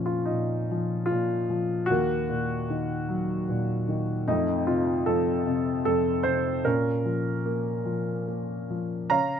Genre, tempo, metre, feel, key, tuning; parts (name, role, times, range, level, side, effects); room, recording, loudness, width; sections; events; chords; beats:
classical, lyrical solo piano; 75 BPM; 3/4; rubato; Bb harmonic minor; A4 = 440 Hz
warm baby grand piano; solo; 0.0-9.4 s; Eb2 to Bb5; -24 LUFS; equal
light reverb; close, detailed microphones; -24 LUFS; side -8 dB against mid
0.0-9.1 A section
0.0 Bb5; 1.9 Ebm; 4.3 F; 6.6 Bbm
0.29 1.10 | 1.90 2.69 3.48 | 4.27 5.06 5.85 | 6.65 7.45 8.27 | 9.11